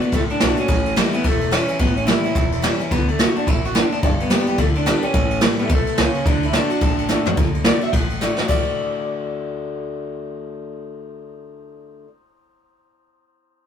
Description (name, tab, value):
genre	rockabilly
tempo	215 BPM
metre	4/4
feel	swing 60% on 8ths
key	D major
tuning	A4 = 440 Hz
part	electric guitar through a small old amp	melody	0.0-12.0 s	A3 to F#5	-23 LUFS	equal	none
part	picked steel-string acoustic guitar	accompaniment	0.0-12.1 s	E2 to G4	-25 LUFS	left 3 dB	none
part	upright bass	bass	0.0-12.0 s	E1 to D2	-27 LUFS	equal	none
part	jazz brush drum kit	drums	0.0-8.6 s	crash cymbal, kick drum, ride cymbal, snare drum, toms	-19 LUFS	right 1 dB	none
room	light reverb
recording	rough rehearsal-room recording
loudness	-17 LUFS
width	side -8 dB against mid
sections	0.0-7.4 A section; 7.4-8.5 B section; 8.5-10.7 C section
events	drum fill 7.1, 8.2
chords	0.0 D; 0.7 A7; 2.9 D; 4.0 G; 5.1 A7; 6.3 D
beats	0.13 0.41 | 0.69 0.96 1.24 1.52 | 1.80 2.08 2.36 2.63 | 2.91 3.19 3.47 3.75 | 4.03 4.30 4.58 4.86 | 5.14 5.42 5.70 5.98 | 6.26 6.54 6.82 7.10 | 7.38 7.66 7.94 8.22 | 8.50 8.78 9.06 9.34 | 9.62 9.90 10.18 10.46